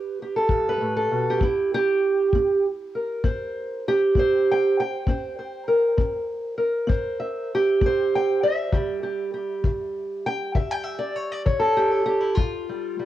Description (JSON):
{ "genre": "acoustic country blues, solo or duo", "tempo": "66 BPM (dotted quarters)", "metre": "12/8", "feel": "straight", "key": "unclear", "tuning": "A4 = 440 Hz", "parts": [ { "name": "fingerpicked steel-string acoustic guitar", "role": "melody", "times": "0.0-13.1 s", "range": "G2 to G5", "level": "-21 LUFS", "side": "right 1 dB", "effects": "cassette tape" }, { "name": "kick drum", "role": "drums", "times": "0.5-12.5 s", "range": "none", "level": "-23 LUFS", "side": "left 2 dB", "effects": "cassette tape" } ], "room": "light reverb, studio reverb", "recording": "home recording on cassette", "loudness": "-21 LUFS", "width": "side -13 dB against mid", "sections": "0.0-13.1 A section", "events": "none", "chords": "0.0 G; 1.4 C7; 8.7 C#dim; 12.4 G7(no3)" }